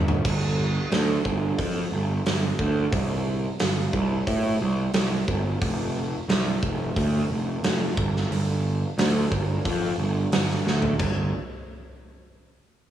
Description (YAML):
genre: quiet-loud alternative rock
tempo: 89 BPM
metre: 4/4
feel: straight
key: unclear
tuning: A4 = 441 Hz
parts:
  - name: fuzz picked electric bass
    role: bass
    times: 0.0-11.3 s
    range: F1 to A2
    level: -24 LUFS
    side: right 1 dB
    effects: overdrive
  - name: big rock drum kit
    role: drums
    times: 0.1-11.2 s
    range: crash cymbal, hi-hat, kick drum, snare drum, toms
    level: -26 LUFS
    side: right 1 dB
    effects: cassette tape
room: little or no reverb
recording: home recording on cassette, studio reverb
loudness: -22 LUFS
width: side -11 dB against mid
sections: 0.2-11.0 A section; 11.0-12.9 B section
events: drum fill 0.0, 10.7-11.0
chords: none